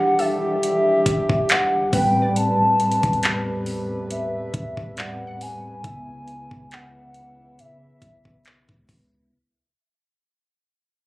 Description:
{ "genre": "contemporary R&B", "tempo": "69 BPM", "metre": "4/4", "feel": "swing 54% on 16ths", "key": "unclear", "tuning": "A4 = 440 Hz", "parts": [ { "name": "hollow clarinet-like synth lead", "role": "melody", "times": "0.0-8.9 s", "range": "E5 to A5", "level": "-22 LUFS", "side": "equal", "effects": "chorus, tape echo" }, { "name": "mellow tine electric piano", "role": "accompaniment", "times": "0.0-9.3 s", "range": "A2 to E5", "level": "-27 LUFS", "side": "equal", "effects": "medium stereo tremolo" }, { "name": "warm French horn section", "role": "sustained chords", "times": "0.0-9.3 s", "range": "C3 to B4", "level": "-26 LUFS", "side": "equal", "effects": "none" }, { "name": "warm 808-style bass", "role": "bass", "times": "0.0-9.3 s", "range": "E1 to C#3", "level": "-35 LUFS", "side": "equal", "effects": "none" }, { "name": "smooth R&B drum kit", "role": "drums", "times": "0.2-9.1 s", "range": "handclaps, hi-hat, kick drum", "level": "-23 LUFS", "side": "equal", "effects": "none" }, { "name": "glassy wavetable pluck", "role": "texture", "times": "0.2-6.5 s", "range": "A4 to F#5", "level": "-35 LUFS", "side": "right 1 dB", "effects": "chorus, tape echo" } ], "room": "digital ambience", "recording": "recorded on a phone in the room, club reverb", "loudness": "-18 LUFS", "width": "side -19 dB against mid", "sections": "0.0-9.3 A section", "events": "fade-out 0.0-9.3", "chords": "0.0 Em9; 1.9 Am9; 5.8 C#m7" }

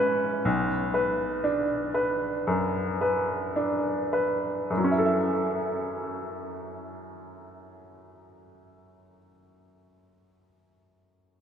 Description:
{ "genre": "classical", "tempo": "52-62 BPM", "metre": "4/4", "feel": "rubato", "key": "F# minor", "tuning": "A4 = 442 Hz", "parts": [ { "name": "bright upright piano", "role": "accompaniment", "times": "0.0-11.4 s", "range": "B1 to E5", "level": "-25 LUFS", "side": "equal", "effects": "none" } ], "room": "wet cathedral reverb, RT60 5.3 s", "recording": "in a vast, echoing space", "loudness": "-24 LUFS", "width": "side -8 dB against mid", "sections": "0.0-4.7 A section; 4.7-9.2 B section", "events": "slowing down 0.0-4.7", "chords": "0.5 Bm; 4.7 F#m7" }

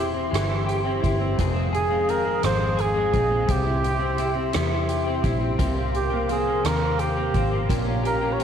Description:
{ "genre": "six-eight pop ballad", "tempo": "57 BPM (dotted quarters)", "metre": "6/8", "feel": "straight", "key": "unclear", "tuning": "A4 = 440 Hz", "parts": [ { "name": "warm flugelhorn", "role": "melody", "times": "0.0-8.4 s", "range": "G4 to Db5", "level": "-26 LUFS", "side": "right 2 dB", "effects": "none" }, { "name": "direct-recorded clean electric guitar", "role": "accompaniment", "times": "0.0-8.4 s", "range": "F2 to Ab4", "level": "-28 LUFS", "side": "equal", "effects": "double-tracked left and right" }, { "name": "airy breathy pad", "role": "sustained chords", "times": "0.0-8.4 s", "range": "G4 to Eb6", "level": "-30 LUFS", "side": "left 1 dB", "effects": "chorus" }, { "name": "direct-recorded clean electric guitar", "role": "arpeggios", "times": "0.0-8.4 s", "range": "F2 to Ab4", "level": "-32 LUFS", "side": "left 11 dB", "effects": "tape echo" }, { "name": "vintage muted fingered electric bass", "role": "bass", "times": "0.0-8.4 s", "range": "E1 to E2", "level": "-26 LUFS", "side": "left 1 dB", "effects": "none" }, { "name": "soft-mallet drum kit", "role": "drums", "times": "0.3-8.4 s", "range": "hi-hat, kick drum, rim click", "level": "-30 LUFS", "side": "right 2 dB", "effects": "none" } ], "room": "moderate echo chamber reverb, RT60 2.0 s", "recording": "1960s-style stereo", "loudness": "-21 LUFS", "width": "side -8 dB against mid", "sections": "0.0-8.4 A section", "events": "none", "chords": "0.0 C/E; 1.4 Fm7; 3.5 C; 5.6 C7sus4; 7.7 Gm7b5/Bb" }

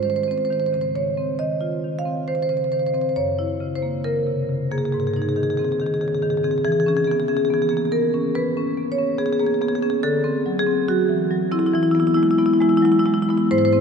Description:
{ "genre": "classical, contemporary piece for solo marimba", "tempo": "70 BPM", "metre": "4/4", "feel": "rubato", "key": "unclear", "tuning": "A4 = 439 Hz", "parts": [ { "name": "marimba with medium hard mallets", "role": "solo", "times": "0.0-13.8 s", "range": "Gb2 to F5", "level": "-18 LUFS", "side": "equal", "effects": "none" } ], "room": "wet cathedral reverb, RT60 5.7 s", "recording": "in a vast, echoing space, nothing above 10.3 kHz", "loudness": "-18 LUFS", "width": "side -6 dB against mid", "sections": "0.0-13.8 A section", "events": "none", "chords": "0.0 Ab6; 3.2 Gb7; 4.9 Ab; 6.7 E6; 10.0 D9; 11.7 E" }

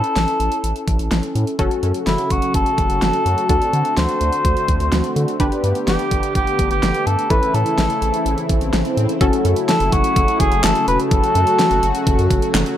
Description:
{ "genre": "synth-pop", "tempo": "126 BPM", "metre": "4/4", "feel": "straight", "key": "F# minor from 9.2 s", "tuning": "A4 = 439 Hz", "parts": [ { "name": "dark cor anglais", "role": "melody", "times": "0.0-12.0 s", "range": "E4 to C5", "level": "-20 LUFS", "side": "left 1 dB", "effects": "dub echo" }, { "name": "funky polysynth comp", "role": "accompaniment", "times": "0.0-12.8 s", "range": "C#4 to B4", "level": "-24 LUFS", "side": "left 2 dB", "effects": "chorus, dub echo" }, { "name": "pop drum kit", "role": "drums", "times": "0.0-12.8 s", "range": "handclaps, hi-hat, kick drum, snare drum", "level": "-20 LUFS", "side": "equal", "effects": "overdrive" }, { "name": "round analog bass", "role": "bass", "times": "0.2-12.6 s", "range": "E1 to D3", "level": "-21 LUFS", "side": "equal", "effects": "none" }, { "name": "warm analog pad", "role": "sustained chords", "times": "1.6-12.8 s", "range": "C#3 to G4", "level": "-24 LUFS", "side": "right 1 dB", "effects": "chorus" }, { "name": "swell", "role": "sound effects", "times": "8.0-9.2 s", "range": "none", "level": "-28 LUFS", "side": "equal", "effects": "none" } ], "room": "light reverb, digital ambience", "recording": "echo-heavy mix", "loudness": "-15 LUFS", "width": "side -11 dB against mid", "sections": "0.0-9.2 A section; 9.2-12.8 B section", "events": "swell 8.0-9.2", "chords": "0.0 A; 1.6 F#m; 3.5 D7; 5.4 Gadd9; 7.3 A; 9.2 F#m7" }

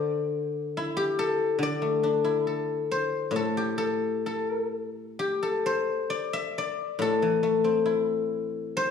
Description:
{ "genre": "chinese traditional, Chinese solo plucked strings", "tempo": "63-71 BPM", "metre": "2/4", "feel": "rubato", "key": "A yu mode", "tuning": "A4 = 445 Hz", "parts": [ { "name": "guzheng", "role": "solo", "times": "0.0-8.9 s", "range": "A2 to E5", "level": "-25 LUFS", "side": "left 3 dB", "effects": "none" } ], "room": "light reverb", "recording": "studio reverb", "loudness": "-25 LUFS", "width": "side -7 dB against mid", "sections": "0.0-5.2 A section; 5.2-8.9 B section", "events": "none", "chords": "none" }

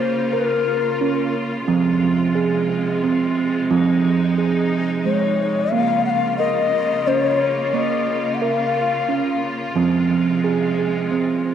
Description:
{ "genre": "world meditative, meditative tuned percussion", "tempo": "89 BPM", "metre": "3/4", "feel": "swing 53% on 16ths", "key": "Bb minor", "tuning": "A4 = 439 Hz", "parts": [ { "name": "breathy bass bansuri", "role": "melody", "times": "0.0-1.3, 5.1-9.4 s", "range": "Bb4 to Gb5", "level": "-20 LUFS", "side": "left 8 dB", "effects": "cassette tape, tape echo" }, { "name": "bright studio string section", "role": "sustained chords", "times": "0.0-11.5 s", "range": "C3 to F4", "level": "-26 LUFS", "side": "left 1 dB", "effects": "cassette tape" }, { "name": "steel tongue drum", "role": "arpeggios", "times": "0.0-11.5 s", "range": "F3 to Bb4", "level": "-19 LUFS", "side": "right 5 dB", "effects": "cassette tape, tape echo" } ], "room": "wet spring reverb, RT60 1.5 s, small room reverb", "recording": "home recording on cassette", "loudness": "-17 LUFS", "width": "side -9 dB against mid", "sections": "0.0-11.5 A section", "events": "none", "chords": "0.0 Bbm; 1.7 Fm; 5.7 Bbm; 9.8 Fm" }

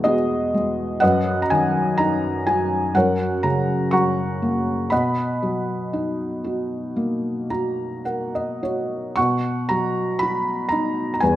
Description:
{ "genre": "classical, lyrical solo piano", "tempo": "52-63 BPM", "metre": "4/4", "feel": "rubato", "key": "B major", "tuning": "A4 = 440 Hz", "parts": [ { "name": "felt-muted upright piano", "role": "solo", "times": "0.0-11.4 s", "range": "E2 to C#6", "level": "-19 LUFS", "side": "equal", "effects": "none" } ], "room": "moderate recital hall reverb, RT60 1.6 s", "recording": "none", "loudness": "-20 LUFS", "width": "side -13 dB against mid", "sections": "0.0-9.2 A section; 9.2-11.4 B section", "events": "felt piano fill 7.0-9.2", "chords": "0.0 Eadd9; 1.0 B/F#; 2.9 F#; 4.9 Bmaj7" }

